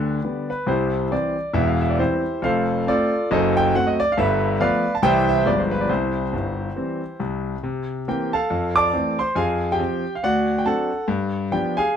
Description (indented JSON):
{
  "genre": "jazz, stride piano",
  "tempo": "138 BPM",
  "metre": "4/4",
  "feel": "swing 58% on 8ths",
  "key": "C major",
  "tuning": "A4 = 440 Hz",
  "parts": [
    { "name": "clear concert grand piano", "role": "solo", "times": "0.0-12.0 s", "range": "E1 to D6", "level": "-19 LUFS", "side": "equal", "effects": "none" }
  ],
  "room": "moderate studio reverb, RT60 0.8 s",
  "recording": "close, detailed microphones",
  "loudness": "-19 LUFS",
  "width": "side -8 dB against mid",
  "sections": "0.0-7.6 A section; 7.6-12.0 B section",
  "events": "none",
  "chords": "0.0 G; 0.7 C; 1.6 C/E; 2.4 F; 3.3 F#dim; 4.2 G13; 5.0 C; 5.5 G7b9; 5.9 C; 7.6 C7; 8.5 Fmaj7; 9.4 Fm; 10.2 D7; 11.1 G7b9"
}